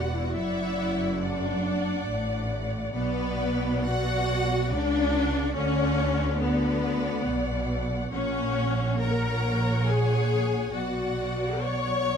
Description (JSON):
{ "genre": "classical, slow romantic movement for string orchestra", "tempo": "70 BPM", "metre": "3/4", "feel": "rubato", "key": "F# major from 8.1 s", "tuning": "A4 = 440 Hz", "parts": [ { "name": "rich studio violin section", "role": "melody", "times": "0.0-12.2 s", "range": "B4 to C#6", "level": "-35 LUFS", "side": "left 2 dB", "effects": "none" }, { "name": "rich studio violin section", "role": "second line", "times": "0.0-12.2 s", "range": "C#5 to F#5", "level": "-33 LUFS", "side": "left 2 dB", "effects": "none" }, { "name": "clear studio viola section", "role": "accompaniment", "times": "0.0-12.2 s", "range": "B3 to C#5", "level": "-29 LUFS", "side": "left 2 dB", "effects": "none" }, { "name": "rich studio cello section", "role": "bass", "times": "0.0-12.2 s", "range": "E2 to D3", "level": "-32 LUFS", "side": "right 2 dB", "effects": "none" }, { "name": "rich studio double bass section", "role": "bass", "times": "0.0-12.2 s", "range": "E1 to D2", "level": "-29 LUFS", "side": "right 1 dB", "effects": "none" } ], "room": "light reverb", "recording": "dark, warm production", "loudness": "-24 LUFS", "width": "side -7 dB against mid", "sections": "0.0-12.2 A section", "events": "none", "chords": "0.3 D/F#; 2.9 Bm; 5.6 Bm/D; 8.1 F#/A#; 10.7 Bm" }